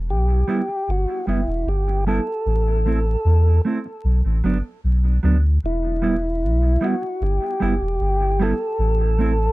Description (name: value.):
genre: roots reggae.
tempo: 76 BPM.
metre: 4/4.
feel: straight.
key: E minor.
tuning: A4 = 440 Hz.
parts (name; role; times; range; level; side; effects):
soft dub sub bass; bass; 0.0-9.5 s; E1 to E2; -18 LUFS; equal; transformer saturation.
tonewheel organ; melody; 0.1-9.5 s; E4 to A4; -24 LUFS; equal; slow rotary speaker, tape echo.
mellow electric guitar; accompaniment; 0.5-9.3 s; F#3 to E4; -25 LUFS; right 3 dB; harmonic tremolo, tape echo.
room: little or no reverb.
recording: dry, close 1970s-style studio recording, vinyl crackle.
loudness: -18 LUFS.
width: side -19 dB against mid.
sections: 0.0-5.6 A section; 5.6-9.5 B section.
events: none.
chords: 0.0 Em; 2.5 Am; 4.0 Bm; 5.6 Em; 8.8 Am.